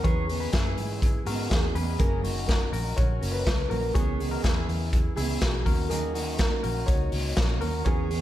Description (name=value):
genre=jangly indie pop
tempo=123 BPM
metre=4/4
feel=straight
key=unclear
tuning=A4 = 437 Hz
part: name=dark upright piano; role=melody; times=0.0-8.2 s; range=F#4 to C#5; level=-34 LUFS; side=right 1 dB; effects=tape echo
part: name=fingerpicked steel-string acoustic guitar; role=accompaniment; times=0.0-8.2 s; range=F#2 to A#4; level=-34 LUFS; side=right 4 dB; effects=slapback echo
part: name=direct-recorded clean electric guitar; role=arpeggios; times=0.0-8.2 s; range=C#4 to C#5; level=-36 LUFS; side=left 5 dB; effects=lush chorus, slapback echo, tape echo
part: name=vintage muted fingered electric bass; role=bass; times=0.0-8.2 s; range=F#1 to G#2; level=-30 LUFS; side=equal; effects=none
part: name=raw garage drum kit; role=drums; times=0.0-8.2 s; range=hi-hat, kick drum, snare drum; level=-26 LUFS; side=equal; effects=none
room=light reverb, small room ambience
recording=none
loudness=-24 LUFS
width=side -13 dB against mid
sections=0.0-8.2 A section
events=none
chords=0.0 E6; 2.0 F#; 3.9 C#m7; 5.7 D#m7